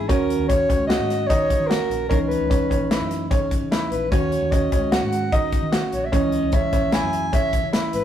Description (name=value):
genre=progressive instrumental, band music in an uneven meter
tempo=149 BPM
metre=5/4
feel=straight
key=C# dorian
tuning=A4 = 440 Hz
part: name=mellow soprano saxophone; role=melody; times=0.0-8.0 s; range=A#4 to G#5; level=-24 LUFS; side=equal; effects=none
part: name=bell-like tine electric piano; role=accompaniment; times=0.0-8.0 s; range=D#3 to F#4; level=-27 LUFS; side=right 3 dB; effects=none
part: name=woody fretless electric bass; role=bass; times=0.0-8.0 s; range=G#1 to D#3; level=-30 LUFS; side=equal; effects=none
part: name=bright baby grand piano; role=arpeggios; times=0.1-8.0 s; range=C#4 to F#4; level=-25 LUFS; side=equal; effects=none
part: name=modern studio drum kit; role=drums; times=0.1-8.0 s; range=hi-hat, kick drum, snare drum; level=-23 LUFS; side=equal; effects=none
room=moderate stone room reverb, RT60 1.2 s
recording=rough rehearsal-room recording, warm saturation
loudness=-18 LUFS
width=side -10 dB against mid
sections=0.0-8.0 A section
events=none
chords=0.1 D#m7; 2.1 C#madd9; 4.1 D#m7; 6.1 C#madd9